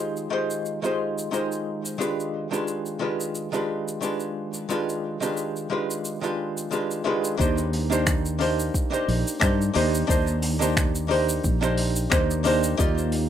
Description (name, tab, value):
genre	sunset chillout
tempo	89 BPM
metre	4/4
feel	swing 55% on 16ths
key	unclear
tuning	A4 = 441 Hz
part	archtop guitar, miked and amplified	accompaniment	0.0-13.3 s	Eb3 to D5	-25 LUFS	equal	auto-pan, vintage 12-bit sampler grit, ping-pong delay
part	vintage brush drum kit	drums	0.2-13.3 s	finger snaps, hi-hat, shaker	-30 LUFS	equal	none
part	mellow fretless electric bass	bass	7.4-13.3 s	Bb1 to G2	-25 LUFS	equal	ensemble chorus
part	electronic kick drum	drums	7.4-12.9 s	none	-25 LUFS	equal	none
room	light reverb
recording	rough home demo mix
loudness	-22 LUFS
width	side -10 dB against mid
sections	0.0-7.4 A section; 7.4-13.3 B section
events	none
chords	0.0 Fm9/Eb; 2.0 G7b9/Eb; 7.4 Cm9; 12.8 Ebmaj9